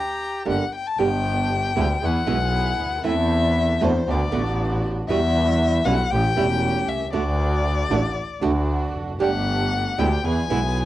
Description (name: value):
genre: tango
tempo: 117 BPM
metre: 4/4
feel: rubato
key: G major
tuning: A4 = 440 Hz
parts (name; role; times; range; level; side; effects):
- warm violin; second line; 0.0-10.9 s; C5 to Bb5; -25 LUFS; left 5 dB; none
- flamenco guitar; accompaniment; 0.5-10.6 s; B2 to G4; -23 LUFS; right 4 dB; none
- warm chamber string section; stabs; 0.5-10.9 s; G3 to A4; -29 LUFS; right 4 dB; none
- clear double bass; bass; 0.5-10.9 s; E1 to E2; -22 LUFS; equal; none
room: light reverb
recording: home recording on cassette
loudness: -19 LUFS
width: side -14 dB against mid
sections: 1.0-10.9 A section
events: violin solo 1.0-10.9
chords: 0.0 Gm; 1.0 G; 2.0 E; 3.0 Am/E; 4.1 D6; 5.1 Emadd9; 6.1 A7; 7.1 D; 9.2 Gsus2; 10.2 E